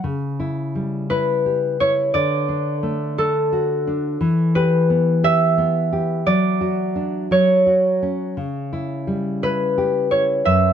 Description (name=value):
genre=children's music, lullaby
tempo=58 BPM (dotted quarters)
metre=6/8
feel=rubato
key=unclear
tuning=A4 = 441 Hz
part: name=concert harp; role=melody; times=0.0-10.7 s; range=F#4 to E5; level=-19 LUFS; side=right 1 dB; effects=plate reverb
part: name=nylon-string guitar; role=accompaniment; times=0.0-10.7 s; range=F#2 to G4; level=-21 LUFS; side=left 1 dB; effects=none
room=moderate studio reverb, RT60 0.6 s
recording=dark, warm production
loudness=-17 LUFS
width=side -8 dB against mid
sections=0.0-10.7 A section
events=none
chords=0.0 C#dim; 2.1 D; 4.2 Em; 6.3 D/F#; 7.3 F#5; 8.4 C#dim